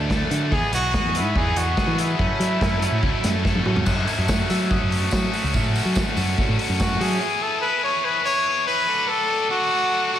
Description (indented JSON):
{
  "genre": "indie rock",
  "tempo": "143 BPM",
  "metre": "4/4",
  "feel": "straight",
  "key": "unclear",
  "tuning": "A4 = 440 Hz",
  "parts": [
    { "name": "combo organ", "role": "sustained chords", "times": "0.0-10.2 s", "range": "F#4 to E6", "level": "-36 LUFS", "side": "equal", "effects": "none" },
    { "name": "raw garage guitar", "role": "riff", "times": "0.0-7.2 s", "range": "E3 to A4", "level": "-29 LUFS", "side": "right 5 dB", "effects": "overdrive, wide subtle chorus, diffuse ambient delay" },
    { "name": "scooped high-gain guitar", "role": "riff", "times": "0.0-10.2 s", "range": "E3 to A4", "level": "-26 LUFS", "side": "left 8 dB", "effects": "distortion" },
    { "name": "picked electric bass", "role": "bass", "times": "0.0-7.2 s", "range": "B1 to F#3", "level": "-24 LUFS", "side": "equal", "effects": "none" },
    { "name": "vintage drum kit", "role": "drums", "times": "0.1-7.1 s", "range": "crash cymbal, hi-hat, kick drum, snare drum, toms", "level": "-24 LUFS", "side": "equal", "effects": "none" },
    { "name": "clear trumpet", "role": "melody", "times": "0.5-3.7, 6.8-10.2 s", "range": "E4 to C#5", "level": "-22 LUFS", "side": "equal", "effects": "none" },
    { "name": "glockenspiel with hard plastic mallets", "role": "second line", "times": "3.9-5.7 s", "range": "C#6 to G#6", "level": "-35 LUFS", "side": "left 2 dB", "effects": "none" },
    { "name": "tambourine", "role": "percussion", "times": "3.9-6.9 s", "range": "none", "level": "-38 LUFS", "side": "right 6 dB", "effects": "none" }
  ],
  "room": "wet lush hall reverb, RT60 1.8 s, small room ambience",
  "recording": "dreamy mix soaked in reverb",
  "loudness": "-19 LUFS",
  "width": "side -10 dB against mid",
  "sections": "0.0-3.9 A section; 3.9-7.2 B section; 7.2-10.2 C section",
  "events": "drum fill 3.4-3.9",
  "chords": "0.0 D; 0.5 Emaj7; 2.2 F#m7; 7.2 Emaj7; 8.9 D",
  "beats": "0.10 | 0.52 0.94 1.36 1.77 | 2.19 2.61 3.03 3.45 | 3.87 4.29 4.70 5.12 | 5.54 5.96 6.38 6.80 | 7.22 7.63 8.05 8.47 | 8.89 9.31 9.73 10.14"
}